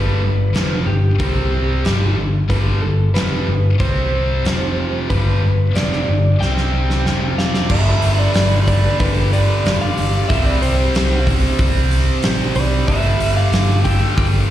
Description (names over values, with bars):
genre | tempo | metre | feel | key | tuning
hard rock | 92 BPM | 4/4 | straight | G mixolydian | A4 = 440 Hz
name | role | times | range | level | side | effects
lightly driven lead guitar | melody | 0.0-14.3 s | G4 to G5 | -24 LUFS | equal | slapback echo
overdriven electric guitar | riff | 0.0-14.5 s | F2 to C4 | -24 LUFS | right 8 dB | slapback echo
scooped high-gain guitar | riff | 0.0-14.5 s | F2 to C4 | -24 LUFS | left 7 dB | distortion, slapback echo
overdriven picked electric bass | bass | 0.0-14.5 s | F1 to C2 | -17 LUFS | equal | none
big rock drum kit | drums | 0.5-14.3 s | crash cymbal, hi-hat, kick drum, snare drum | -21 LUFS | equal | none
octave-fuzz lead guitar | second line | 7.4-14.2 s | G4 to E5 | -30 LUFS | right 1 dB | distortion, slapback echo
room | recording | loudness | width
studio ambience | live gig heard through the venue's PA, recital hall reverb | -14 LUFS | side -12 dB against mid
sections
0.0-7.7 A section; 7.7-14.5 B section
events
drum fill 6.4-7.7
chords
0.0 G; 1.2 C5; 1.8 G; 3.8 C5; 4.5 F5; 5.1 G; 6.4 C5; 7.1 F5; 7.7 G5; 10.3 C5; 12.9 G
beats
0.54 1.19 1.84 | 2.50 3.15 3.80 4.45 | 5.10 5.75 6.40 7.05 | 7.70 8.35 9.00 9.65 | 10.29 10.94 11.59 12.24 | 12.88 13.53 14.18